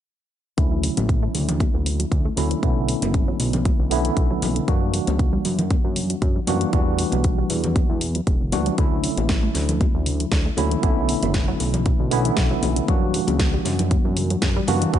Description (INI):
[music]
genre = nu-disco, nu disco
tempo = 117 BPM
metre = 4/4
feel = swing 54% on 16ths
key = D major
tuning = A4 = 440 Hz
[part]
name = barky tine electric piano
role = accompaniment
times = 0.6-15.0 s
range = D3 to F#4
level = -25 LUFS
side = right 1 dB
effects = medium stereo tremolo, sidechain pumping, low-pass filter, digital delay
[part]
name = wide unison pluck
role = arpeggios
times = 0.6-15.0 s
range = B2 to A3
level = -30 LUFS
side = right 1 dB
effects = none
[part]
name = fat analog bass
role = bass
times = 0.6-15.0 s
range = E1 to F#2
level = -24 LUFS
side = equal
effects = sidechain pumping
[part]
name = electronic kick drum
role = drums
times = 0.6-15.0 s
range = none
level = -21 LUFS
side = equal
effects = none
[part]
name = pop drum kit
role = drums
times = 0.6-15.0 s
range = hi-hat, snare drum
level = -28 LUFS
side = left 1 dB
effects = none
[part]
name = congas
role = percussion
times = 1.0-14.8 s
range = none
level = -31 LUFS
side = left 4 dB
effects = none
[sound]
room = little or no reverb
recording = nothing above 10.6 kHz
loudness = -19 LUFS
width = side -10 dB against mid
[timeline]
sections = 0.6-15.0 A section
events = filter sweep on tine electric piano 0.6-15.0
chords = 0.6 Dmaj9; 2.6 Bm11; 4.7 F#7b9b13; 6.7 Em11; 8.8 Dmaj9; 10.8 Bm11; 12.9 F#7b9b13